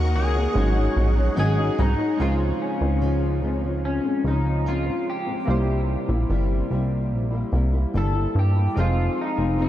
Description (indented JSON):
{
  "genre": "indie pop",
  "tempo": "73 BPM",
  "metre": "4/4",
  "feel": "straight",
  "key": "Db major",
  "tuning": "A4 = 440 Hz",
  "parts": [
    { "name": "electric guitar at the edge of break-up", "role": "melody", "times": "0.0-9.7 s", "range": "Db4 to A4", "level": "-28 LUFS", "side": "left 2 dB", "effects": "analog chorus, tape echo" },
    { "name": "chorused retro synth keys", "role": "accompaniment", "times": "0.0-9.7 s", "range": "Ab3 to F5", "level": "-31 LUFS", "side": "right 4 dB", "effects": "cassette tape" },
    { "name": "flamenco guitar", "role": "accompaniment", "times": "0.0-9.7 s", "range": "Ab2 to Ab4", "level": "-28 LUFS", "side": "left 2 dB", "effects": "lush chorus, warbly pitch drift" },
    { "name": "phased string machine", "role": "sustained chords", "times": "0.0-2.2 s", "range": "Ab4 to Db6", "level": "-37 LUFS", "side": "left 1 dB", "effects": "ensemble chorus, phaser" },
    { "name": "plucky analog bass", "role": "bass", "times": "0.0-9.7 s", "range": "F1 to G2", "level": "-22 LUFS", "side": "equal", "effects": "none" }
  ],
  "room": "moderate huge ambient reverb, RT60 8.1 s",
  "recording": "dreamy mix soaked in reverb, cassette tape",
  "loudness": "-20 LUFS",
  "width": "side -12 dB against mid",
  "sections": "0.0-2.2 A section; 2.2-9.7 B section",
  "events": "none",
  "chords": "0.0 Ebm7; 0.6 Ab7sus4; 2.2 Dbmaj7; 5.5 C7; 8.8 Fm7"
}